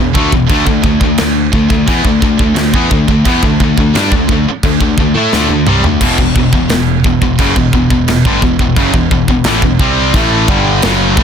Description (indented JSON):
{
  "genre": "heavy metal",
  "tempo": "87 BPM",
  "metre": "4/4",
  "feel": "straight",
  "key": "E minor",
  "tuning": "A4 = 442 Hz",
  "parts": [
    { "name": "distorted electric guitar", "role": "riff", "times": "0.0-11.2 s", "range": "E2 to E4", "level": "-19 LUFS", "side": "equal", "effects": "overdrive" },
    { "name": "heavy high-gain guitar", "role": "riff", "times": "0.0-11.2 s", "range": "E2 to E4", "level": "-16 LUFS", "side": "right 10 dB", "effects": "distortion" },
    { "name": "tight distorted guitar", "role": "riff", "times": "0.0-11.2 s", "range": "E2 to E4", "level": "-15 LUFS", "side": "left 12 dB", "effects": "distortion" },
    { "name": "modern bright picked electric bass", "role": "bass", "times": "0.0-11.2 s", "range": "E1 to A2", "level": "-17 LUFS", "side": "equal", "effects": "none" },
    { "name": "tight metal drum kit", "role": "drums", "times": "0.1-11.2 s", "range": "china cymbal, crash cymbal, kick drum, snare drum, splash cymbal, toms", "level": "-14 LUFS", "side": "equal", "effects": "none" }
  ],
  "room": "small room ambience",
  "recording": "dense, heavily limited modern master",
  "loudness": "-9 LUFS",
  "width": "side -7 dB against mid",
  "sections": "0.0-11.2 A section",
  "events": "drum fill 5.3-6.0",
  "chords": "0.5 D5; 6.0 Em"
}